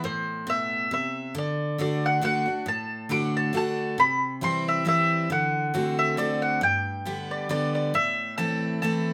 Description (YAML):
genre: bluegrass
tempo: 137 BPM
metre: 3/4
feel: swing 56% on 8ths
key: unclear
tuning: A4 = 444 Hz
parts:
  - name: mandolin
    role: melody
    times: 0.0-9.1 s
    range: C5 to D6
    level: -28 LUFS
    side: equal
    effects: none
  - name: picked steel-string acoustic guitar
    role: accompaniment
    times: 0.0-9.1 s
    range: G2 to G4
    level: -30 LUFS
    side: equal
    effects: none
room: moderate studio reverb, RT60 0.8 s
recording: none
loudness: -26 LUFS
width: mono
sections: 0.0-7.9 A section; 7.9-9.1 A section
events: none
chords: 0.0 Am; 1.4 D; 4.0 C; 5.3 D7; 6.6 G; 7.9 Am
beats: | 0.04 0.47 0.91 | 1.35 1.79 2.23 | 2.67 3.11 3.54 | 3.98 4.42 4.86 | 5.30 5.74 6.18 | 6.62 7.06 7.50 | 7.94 8.38 8.81